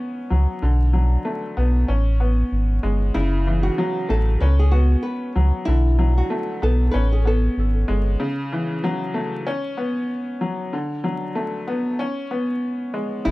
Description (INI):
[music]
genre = hip hop, boom-bap hip-hop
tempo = 95 BPM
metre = 4/4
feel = swing 58% on 16ths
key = F# minor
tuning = A4 = 440 Hz
[part]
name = warm upright piano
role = accompaniment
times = 0.0-13.3 s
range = C#3 to C#4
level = -24 LUFS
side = left 1 dB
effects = high-pass filter, low-pass filter
[part]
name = sub bass with octave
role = bass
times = 0.3-8.2, 13.3 s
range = F#1 to C#2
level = -17 LUFS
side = equal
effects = none
[part]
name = flamenco guitar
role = melody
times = 3.1-7.7, 13.2-13.3 s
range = E4 to B4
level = -27 LUFS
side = equal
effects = high-pass filter, low-pass filter, analog delay
[sound]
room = light reverb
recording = vinyl crackle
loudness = -19 LUFS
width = side -20 dB against mid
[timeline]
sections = 0.0-3.1 A section; 3.1-13.3 B section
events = break 8.2-13.3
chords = 0.0 C#7sus4; 0.6 Bm7; 1.9 Amaj9; 3.1 F#m7; 4.4 C#7sus4; 5.7 Bm7; 6.9 Amaj9; 8.2 F#m7; 9.5 C#7sus4; 10.7 Bm7; 12.0 G#madd11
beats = | 0.62 1.25 1.88 2.51 | 3.15 3.78 4.41 5.04 | 5.67 6.30 6.94 7.57 | 8.20 8.83 9.46 10.09 | 10.72 11.36 11.99 12.62 | 13.25